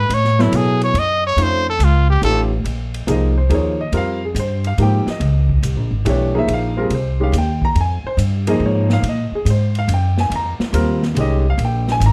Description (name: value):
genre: modal jazz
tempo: 141 BPM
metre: 3/4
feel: swing 68% on 8ths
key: Bb dorian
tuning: A4 = 440 Hz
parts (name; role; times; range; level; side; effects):
- brilliant trumpet; melody; 0.0-2.4 s; E4 to D#5; -20 LUFS; equal; none
- upright bass; bass; 0.0-12.1 s; Ab1 to B2; -19 LUFS; equal; none
- swinging big-band drum kit; drums; 0.1-12.1 s; hi-hat, kick drum, ride cymbal, snare drum; -31 LUFS; equal; none
- warm concert grand piano; accompaniment; 0.4-12.1 s; Eb3 to Bb5; -22 LUFS; equal; none
room: light reverb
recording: dark, warm production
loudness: -17 LUFS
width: mono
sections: 0.0-2.7 A section; 2.7-12.1 A section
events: trumpet solo 0.0-2.7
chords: 0.0 F#m11; 1.4 F7b13; 2.7 Bbm11